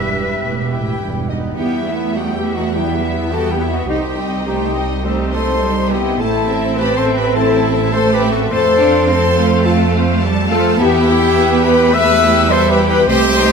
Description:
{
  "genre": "cinematic, heroic adventure film score",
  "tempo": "104 BPM",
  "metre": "4/4",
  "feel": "straight",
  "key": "E harmonic minor",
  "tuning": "A4 = 440 Hz",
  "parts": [
    { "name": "clear symphonic violin section", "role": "melody", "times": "0.0-13.5 s", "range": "C5 to A5", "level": "-26 LUFS", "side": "left 3 dB", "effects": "none" },
    { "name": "clear oboe", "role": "second line", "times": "0.0-1.0 s", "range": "E5", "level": "-30 LUFS", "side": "equal", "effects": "none" },
    { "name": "mellow clarinet", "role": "second line", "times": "0.0-13.5 s", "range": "C4 to E5", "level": "-25 LUFS", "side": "left 2 dB", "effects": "none" },
    { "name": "mellow hollow silver concert flute", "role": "second line", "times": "0.0-13.5 s", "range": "C5 to B6", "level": "-25 LUFS", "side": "left 2 dB", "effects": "none" },
    { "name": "rich symphonic violin section", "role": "second line", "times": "0.0-13.5 s", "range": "G4 to E6", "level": "-27 LUFS", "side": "left 1 dB", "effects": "none" },
    { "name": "rich symphonic viola section", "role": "accompaniment", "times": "0.0-13.5 s", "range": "G3 to Eb5", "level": "-24 LUFS", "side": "equal", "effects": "none" },
    { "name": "mellow French horn section", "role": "sustained chords", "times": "0.0-13.5 s", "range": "B3 to E5", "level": "-19 LUFS", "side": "left 5 dB", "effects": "none" },
    { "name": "clear trumpet section", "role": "stabs", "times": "0.0-13.5 s", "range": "G3 to B4", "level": "-22 LUFS", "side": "equal", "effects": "none" },
    { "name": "rich symphonic cello section", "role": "bass", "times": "0.0-13.5 s", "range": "G2 to Eb4", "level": "-20 LUFS", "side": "right 3 dB", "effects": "none" },
    { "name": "rich symphonic double bass section", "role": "bass", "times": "0.0-13.5 s", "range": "E1 to F2", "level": "-20 LUFS", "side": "right 4 dB", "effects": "none" }
  ],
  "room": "moderate scoring stage reverb, RT60 2.0 s",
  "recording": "none",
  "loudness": "-13 LUFS",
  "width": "side -6 dB against mid",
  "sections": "0.0-1.6 A section; 1.6-13.5 A section",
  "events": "none",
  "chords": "0.0 Em; 3.9 Cm; 6.2 Am; 8.5 F; 10.8 Em"
}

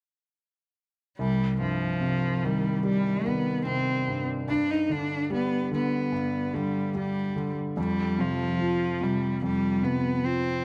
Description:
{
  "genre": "pop ballad",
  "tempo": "73 BPM",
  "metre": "4/4",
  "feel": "straight",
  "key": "C harmonic minor",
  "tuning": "A4 = 439 Hz",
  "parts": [
    { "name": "rich cello", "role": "melody", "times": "1.2-10.6 s", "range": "F3 to Eb4", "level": "-30 LUFS", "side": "equal", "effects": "analog delay" },
    { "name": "warm concert grand piano", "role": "accompaniment", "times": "1.2-10.6 s", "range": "C2 to G3", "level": "-31 LUFS", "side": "equal", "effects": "analog delay" }
  ],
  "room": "light reverb",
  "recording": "echo-heavy mix",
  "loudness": "-27 LUFS",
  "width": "mono",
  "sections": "1.2-10.6 A section",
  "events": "none",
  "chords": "1.2 Cm; 4.5 G; 7.8 F5"
}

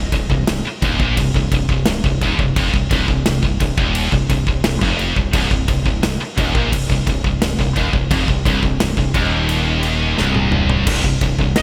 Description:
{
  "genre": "heavy metal",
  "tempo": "87 BPM",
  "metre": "4/4",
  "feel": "straight",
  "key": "C minor",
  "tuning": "A4 = 441 Hz",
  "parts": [
    { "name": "scooped high-gain guitar", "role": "riff", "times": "0.0-11.6 s", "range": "C2 to Bb2", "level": "-25 LUFS", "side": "equal", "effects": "distortion" },
    { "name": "scooped high-gain guitar", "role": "riff", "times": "0.0-11.6 s", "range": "C2 to Bb2", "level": "-25 LUFS", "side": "equal", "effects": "distortion" },
    { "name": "growling fingered electric bass", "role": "bass", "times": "0.0-11.6 s", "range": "C1 to Bb1", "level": "-24 LUFS", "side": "equal", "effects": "overdrive" },
    { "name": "big rock drum kit", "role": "drums", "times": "0.1-11.6 s", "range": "crash cymbal, kick drum, snare drum, toms", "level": "-21 LUFS", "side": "equal", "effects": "gated reverb" },
    { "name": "crunchy overdriven guitar", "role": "riff", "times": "5.3-11.6 s", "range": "C2 to Bb2", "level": "-30 LUFS", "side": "equal", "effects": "none" },
    { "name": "high-gain lead guitar", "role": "melody", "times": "11.6 s", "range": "Eb5", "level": "-34 LUFS", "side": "equal", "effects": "none" }
  ],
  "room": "light reverb, small room ambience",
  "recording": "bright 1980s-style digital production",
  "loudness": "-17 LUFS",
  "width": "mono",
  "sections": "0.0-10.9 A section",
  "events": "drum fill 10.2-10.9",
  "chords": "0.0 Cm; 10.9 N.C."
}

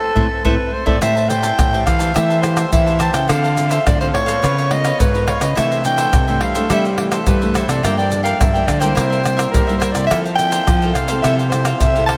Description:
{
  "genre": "samba and choro",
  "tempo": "106 BPM",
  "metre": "4/4",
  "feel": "straight",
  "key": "A minor",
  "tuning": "A4 = 439 Hz",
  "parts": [
    { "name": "growling soprano saxophone", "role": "melody", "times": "0.0-12.1 s", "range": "A4 to A5", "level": "-21 LUFS", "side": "equal", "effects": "tape echo" },
    { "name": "cavaquinho", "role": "accompaniment", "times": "0.2-12.2 s", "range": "D4 to A5", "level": "-27 LUFS", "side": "equal", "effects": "none" },
    { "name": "nylon-string guitar", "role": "accompaniment", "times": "0.2-12.2 s", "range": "G2 to C5", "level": "-27 LUFS", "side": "equal", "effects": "lush chorus" },
    { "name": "nylon-string guitar", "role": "bass", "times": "0.2-12.2 s", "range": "G2 to G3", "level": "-22 LUFS", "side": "equal", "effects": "none" },
    { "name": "surdo, maracas, pandeiro and tamborim", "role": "percussion", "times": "0.2-12.2 s", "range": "none", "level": "-22 LUFS", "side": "equal", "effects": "none" }
  ],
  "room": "wet huge ambient reverb, RT60 8.1 s",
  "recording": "dreamy mix soaked in reverb",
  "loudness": "-16 LUFS",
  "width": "mono",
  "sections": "0.0-1.0 A section; 1.0-12.2 B section",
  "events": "band accent 0.0-1.0",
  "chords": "0.0 Amadd9; 1.0 Am7; 3.3 Dm7; 4.4 C#6; 5.6 C69; 7.8 Gm7; 9.0 C7; 10.1 Fmaj7"
}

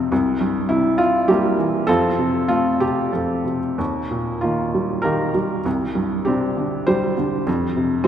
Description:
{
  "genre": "classical, lyrical solo piano",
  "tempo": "91-104 BPM",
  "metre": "3/4",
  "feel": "rubato",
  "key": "C dorian",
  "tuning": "A4 = 437 Hz",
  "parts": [
    { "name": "felt-muted upright piano", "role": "solo", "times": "0.0-8.1 s", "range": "C2 to C5", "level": "-18 LUFS", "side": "equal", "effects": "none" }
  ],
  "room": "wet church reverb, RT60 2.9 s",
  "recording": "recorded in a church or concert hall",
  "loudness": "-18 LUFS",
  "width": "side -9 dB against mid",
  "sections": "0.0-8.1 A section",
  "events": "none",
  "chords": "0.1 C7; 1.9 F; 3.8 Ebadd9; 5.7 Csus2; 7.5 F5"
}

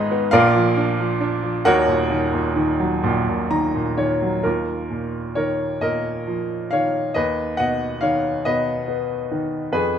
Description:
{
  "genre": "classical, lyrical solo piano",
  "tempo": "42-48 BPM (dotted quarters)",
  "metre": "6/8",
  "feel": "rubato",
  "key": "Eb minor",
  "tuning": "A4 = 440 Hz",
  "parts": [
    { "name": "bright baby grand piano", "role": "solo", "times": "0.0-10.0 s", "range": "Eb1 to Bb5", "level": "-18 LUFS", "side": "equal", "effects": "none" }
  ],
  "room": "moderate recital hall reverb, RT60 1.5 s",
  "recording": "none",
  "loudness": "-18 LUFS",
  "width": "side -8 dB against mid",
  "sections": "0.0-4.5 A section; 4.5-10.0 B section",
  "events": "grand piano fill 3.0-4.5",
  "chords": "0.3 Bb; 1.7 Ebm7; 4.5 Ebsus2; 7.1 Badd9/D#"
}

